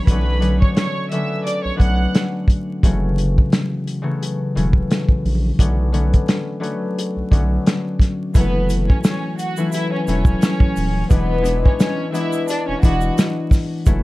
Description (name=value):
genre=hip hop, boom-bap hip-hop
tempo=87 BPM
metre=4/4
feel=swing 55% on 16ths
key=F# minor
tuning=A4 = 440 Hz
part: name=warm studio violin section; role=melody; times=0.0-2.1, 8.3-13.1 s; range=B3 to F#6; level=-25 LUFS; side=right 2 dB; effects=high-pass filter, low-pass filter, analog delay
part: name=concert harp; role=accompaniment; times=0.0-14.0 s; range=C#3 to E4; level=-22 LUFS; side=left 2 dB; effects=cassette tape, high-pass filter, low-pass filter
part: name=saturated sub bass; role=bass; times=0.1-14.0 s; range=D#1 to B1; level=-20 LUFS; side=equal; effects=none
part: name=warm soul drum kit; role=drums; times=0.1-14.0 s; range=hi-hat, kick drum, snare drum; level=-16 LUFS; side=equal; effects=none
part: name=tube shaker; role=percussion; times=8.3-14.0 s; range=none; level=-39 LUFS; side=right 15 dB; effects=none
room=little or no reverb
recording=dark, warm production, vinyl crackle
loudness=-16 LUFS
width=side -19 dB against mid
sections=0.0-8.3 A section; 8.3-14.0 B section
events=none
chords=0.1 Bm9; 2.8 F#m7; 5.6 Bm9; 8.3 F#m7; 11.1 E7